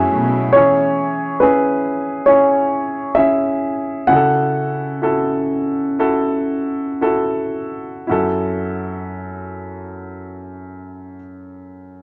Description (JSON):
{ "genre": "pop ballad", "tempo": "54-70 BPM", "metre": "4/4", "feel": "straight", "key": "F# minor", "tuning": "A4 = 441 Hz", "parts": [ { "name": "warm baby grand piano", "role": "melody", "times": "0.0-7.0 s", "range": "B4 to F#5", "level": "-18 LUFS", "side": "equal", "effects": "none" }, { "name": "clear grand piano", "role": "accompaniment", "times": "0.0-12.0 s", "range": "F#2 to A4", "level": "-21 LUFS", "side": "equal", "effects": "none" }, { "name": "lush unison pad", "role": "sustained chords", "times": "0.0-0.5 s", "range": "F#3 to E4", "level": "-30 LUFS", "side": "equal", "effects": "chorus" }, { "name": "dark studio cello section", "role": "bass", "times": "0.0-0.5 s", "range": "B2", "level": "-25 LUFS", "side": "equal", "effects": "none" } ], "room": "moderate small room reverb, RT60 0.5 s", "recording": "none", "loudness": "-18 LUFS", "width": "mono", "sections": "0.0-8.1 A section; 8.1-12.0 B section", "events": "slowing down 0.5-8.1", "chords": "0.0 F#m7; 0.5 C#m/E; 4.1 F#m7" }